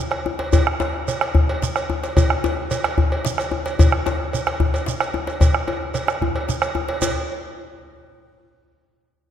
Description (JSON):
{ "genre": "west african traditional, West African drum ensemble", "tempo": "148 BPM (dotted quarters)", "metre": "12/8", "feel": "straight", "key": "none", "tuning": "none", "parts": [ { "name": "bombo", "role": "percussion", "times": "0.1-7.1 s", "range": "none", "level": "-21 LUFS", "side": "right 1 dB", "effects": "none" }, { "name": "cowbell", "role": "percussion", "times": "0.1-7.1 s", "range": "none", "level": "-26 LUFS", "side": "right 2 dB", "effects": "none" }, { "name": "djembe", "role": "percussion", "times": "0.3-7.1 s", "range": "none", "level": "-24 LUFS", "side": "left 5 dB", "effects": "none" }, { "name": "shekere", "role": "percussion", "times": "0.5-7.1 s", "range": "none", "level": "-30 LUFS", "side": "right 5 dB", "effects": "none" } ], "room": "wet concert hall reverb, RT60 2.2 s", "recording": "none", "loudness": "-18 LUFS", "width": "side -10 dB against mid", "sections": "0.0-7.0 A section; 7.0-8.6 B section", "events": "speeding up 0.0-8.6", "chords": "none", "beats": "0.12 | 0.53 0.94 1.35 1.76 | 2.17 2.58 2.98 3.39 | 3.79 4.20 4.61 5.01 | 5.41 5.82 6.22 6.62 | 7.02" }